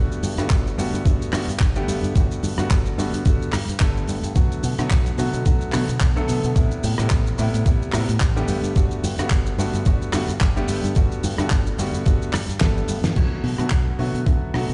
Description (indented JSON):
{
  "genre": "nu-disco, nu disco",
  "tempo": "109 BPM",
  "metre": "4/4",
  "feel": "swing 56% on 16ths",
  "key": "G major",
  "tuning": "A4 = 440 Hz",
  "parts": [
    { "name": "bright grand piano", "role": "accompaniment", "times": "0.0-14.7 s", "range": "C3 to A4", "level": "-28 LUFS", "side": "equal", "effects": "vintage 12-bit sampler grit, sidechain pumping, dub echo" },
    { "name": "fingered electric bass with an envelope filter", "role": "bass", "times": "0.0-14.7 s", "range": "G1 to B2", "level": "-26 LUFS", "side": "equal", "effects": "tube saturation" },
    { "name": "damped 70s drum kit", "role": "drums", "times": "0.1-14.7 s", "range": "crash cymbal, handclaps, hi-hat, rim click, shaker, snare drum", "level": "-31 LUFS", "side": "equal", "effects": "none" },
    { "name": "electronic kick drum", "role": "drums", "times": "0.5-14.4 s", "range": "none", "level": "-21 LUFS", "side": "equal", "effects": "none" }
  ],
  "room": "studio reverb",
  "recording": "played on a big sound system in a bare room, stone room reverb, nothing above 10.9 kHz",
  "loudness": "-21 LUFS",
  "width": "mono",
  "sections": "0.0-13.2 A section; 13.2-14.7 B section",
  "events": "drop 0.0-13.2; drum fill 12.6-13.2; band accent 13.0",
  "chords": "0.0 Gmaj9; 4.4 Bm7; 6.6 Am9; 8.5 Gmaj9; 13.2 Bm7"
}